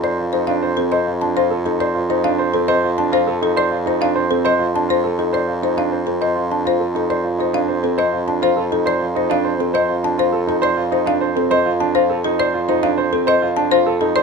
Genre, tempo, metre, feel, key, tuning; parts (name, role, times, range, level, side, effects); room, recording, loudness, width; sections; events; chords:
classical, minimalist pattern music; 102 BPM; 3/4; straight; F mixolydian; A4 = 440 Hz
folk marimba with medium mallets; melody; 0.0-14.2 s; A4 to A5; -20 LUFS; left 8 dB
warm baby grand piano; arpeggios; 0.0-14.2 s; C4 to C5; -19 LUFS; right 7 dB
warm bassoon; bass; 0.0-14.2 s; F2; -22 LUFS; equal
light reverb; close, detailed microphones; -16 LUFS; side -5 dB against mid
0.0-14.2 A section
0.0 F7